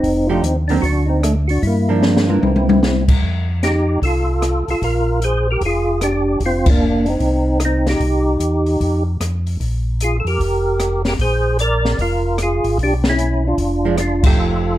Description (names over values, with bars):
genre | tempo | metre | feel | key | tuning
soul jazz organ trio | 151 BPM | 4/4 | swing 65% on 8ths | F mixolydian | A4 = 437 Hz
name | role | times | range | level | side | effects
percussive tonewheel organ | melody | 0.0-14.8 s | A3 to D5 | -18 LUFS | equal | slow rotary speaker, chorus vibrato
mellow tonewheel organ | bass | 0.0-14.8 s | F1 to G2 | -19 LUFS | equal | slow rotary speaker
open jazz drum kit | drums | 0.0-14.3 s | crash cymbal, hi-hat, kick drum, rim click, snare drum, toms | -19 LUFS | left 1 dB | none
archtop guitar, miked and amplified | accompaniment | 0.3-2.8, 13.8-14.8 s | D3 to G4 | -21 LUFS | right 5 dB | none
room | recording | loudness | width
moderate club reverb, RT60 0.8 s | dark, warm production | -15 LUFS | side -14 dB against mid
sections
0.0-3.2 A section; 3.2-14.8 A section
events
drum fill 2.0-2.8; band accent 6.6, 14.2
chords
0.0 F9; 0.8 D5; 1.6 Gm7; 2.4 C7; 3.2 F9; 4.8 Bb7; 6.4 F5; 8.0 Cm; 8.8 N.C.; 9.6 Bb9; 12.8 Bdim